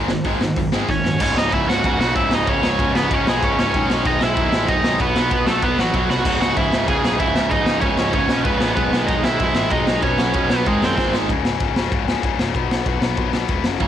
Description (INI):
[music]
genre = punk rock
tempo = 190 BPM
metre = 4/4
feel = straight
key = C# minor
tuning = A4 = 439 Hz
[part]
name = tight distorted guitar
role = riff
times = 0.0-13.9 s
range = C#2 to B3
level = -24 LUFS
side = left 13 dB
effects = distortion
[part]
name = tight distorted guitar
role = riff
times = 0.0-11.3, 13.8-13.9 s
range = C#2 to B3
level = -23 LUFS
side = right 9 dB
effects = distortion
[part]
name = fuzz picked electric bass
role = bass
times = 0.0-13.9 s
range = C#1 to G#2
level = -26 LUFS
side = equal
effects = overdrive
[part]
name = raw garage drum kit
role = drums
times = 0.1-13.9 s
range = crash cymbal, hi-hat, kick drum, ride cymbal, snare drum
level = -22 LUFS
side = equal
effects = cassette tape
[part]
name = crunchy overdriven guitar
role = melody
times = 0.9-11.1 s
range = F#3 to G#5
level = -21 LUFS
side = right 2 dB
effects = analog delay
[sound]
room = little or no reverb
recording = home recording on cassette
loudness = -16 LUFS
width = side -10 dB against mid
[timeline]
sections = 0.0-1.2 A section; 1.2-11.3 B section; 11.3-13.9 C section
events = drum fill 0.9-1.2, 6.1, 11.0-11.3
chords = 0.0 G#5; 1.2 C#m; 3.7 G#m/B; 5.0 B5; 6.3 C#m; 8.8 G#m/B; 10.0 B5; 10.7 G#; 11.3 C#5; 12.6 B5